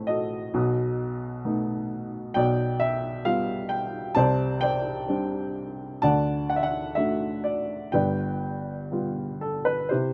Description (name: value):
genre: classical, lyrical solo piano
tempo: 59-67 BPM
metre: 4/4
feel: rubato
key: G major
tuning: A4 = 439 Hz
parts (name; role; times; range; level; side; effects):
- dark upright piano; solo; 0.0-10.1 s; G1 to A5; -27 LUFS; equal; none
room: light reverb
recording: close, detailed microphones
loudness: -27 LUFS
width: mono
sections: 0.0-9.9 A section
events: none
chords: 0.0 Am; 0.5 B7; 2.4 G7/B; 4.2 Csus2; 6.0 D; 7.9 G7